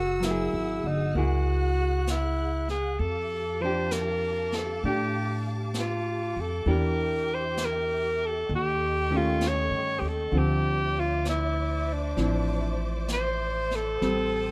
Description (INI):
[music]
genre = jazz ballad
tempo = 65 BPM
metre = 4/4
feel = swing 67% on 8ths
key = D minor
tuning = A4 = 436 Hz
[part]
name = clear alto saxophone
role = melody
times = 0.0-14.5 s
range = D4 to Db5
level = -31 LUFS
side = equal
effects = none
[part]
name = warm studio string section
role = sustained chords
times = 0.0-14.5 s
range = G4 to F#6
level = -41 LUFS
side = equal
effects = none
[part]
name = upright bass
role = bass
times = 0.0-14.5 s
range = F#1 to A2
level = -32 LUFS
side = equal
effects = none
[part]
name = hollow-body jazz guitar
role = accompaniment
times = 0.2-14.5 s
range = D3 to G#4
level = -34 LUFS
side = equal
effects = none
[part]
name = jazz brush drum kit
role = drums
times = 0.2-14.5 s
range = brushed snare drum, hi-hat, snare drum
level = -41 LUFS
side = equal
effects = none
[sound]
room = light reverb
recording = none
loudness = -27 LUFS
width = mono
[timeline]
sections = 0.0-14.5 A section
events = none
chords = 0.0 F#9; 3.0 F69; 6.7 Em7b5; 8.5 Eb7#11; 10.3 Dm9; 14.0 Am7b5